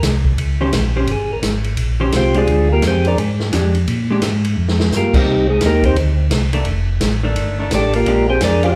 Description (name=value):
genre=soul jazz organ trio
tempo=172 BPM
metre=4/4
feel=swing 64% on 8ths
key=Bb mixolydian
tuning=A4 = 440 Hz
part: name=percussive tonewheel organ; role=melody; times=0.0-8.7 s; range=G3 to F5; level=-20 LUFS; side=equal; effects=slow rotary speaker, slapback echo
part: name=mellow tonewheel organ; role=bass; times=0.0-8.7 s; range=F1 to Bb2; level=-20 LUFS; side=equal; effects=chorus vibrato, slow rotary speaker
part: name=swinging big-band drum kit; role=drums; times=0.0-8.7 s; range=crash cymbal, hi-hat, kick drum, ride cymbal, snare drum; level=-23 LUFS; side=equal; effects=none
part: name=vintage hollow-body jazz guitar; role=accompaniment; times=0.6-8.8 s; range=Eb3 to C5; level=-25 LUFS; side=equal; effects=slapback echo
room=light reverb, small room reverb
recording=live gig heard through the venue's PA, club reverb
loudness=-16 LUFS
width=mono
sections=0.0-8.8 A section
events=tonewheel organ solo 0.0-8.8; drum fill 4.6-4.9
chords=0.0 Eb13; 2.5 Bb13; 5.3 Cm7; 6.7 F13; 8.1 Bb13